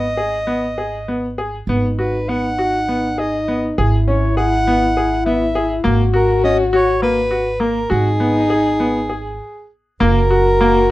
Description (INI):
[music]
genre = contemporary instrumental, chamber music in an uneven meter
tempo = 202 BPM (eighths)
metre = 7/8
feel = straight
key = G# minor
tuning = A4 = 439 Hz
[part]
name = mellow soprano saxophone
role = melody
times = 0.0-10.9 s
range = G#4 to F#5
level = -20 LUFS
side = right 1 dB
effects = none
[part]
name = clear grand piano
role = arpeggios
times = 0.0-10.8 s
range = A#3 to G#4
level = -20 LUFS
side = left 1 dB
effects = none
[part]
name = upright bass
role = bass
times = 0.0-10.9 s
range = F#1 to G#1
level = -21 LUFS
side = right 1 dB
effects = none
[part]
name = mellow French horn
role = second line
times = 1.7-10.9 s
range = D#4 to F#4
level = -20 LUFS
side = left 3 dB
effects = none
[sound]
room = little or no reverb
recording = close, detailed microphones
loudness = -14 LUFS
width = side -16 dB against mid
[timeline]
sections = 0.0-10.0 A section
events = stop 9.4-10.0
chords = 0.0 G#m7; 3.8 E/G#; 5.8 F#/G#; 7.9 G#m; 10.0 F#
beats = 0.17 0.47 0.77 1.07 1.37 | 1.68 1.98 2.28 2.58 2.88 3.17 3.47 | 3.77 4.07 4.36 4.66 4.95 5.25 5.54 | 5.84 6.14 6.43 6.73 7.02 7.32 7.61 | 7.91 8.21 8.50 8.80 9.10 9.40 9.71 | 10.01 10.31 10.61 10.91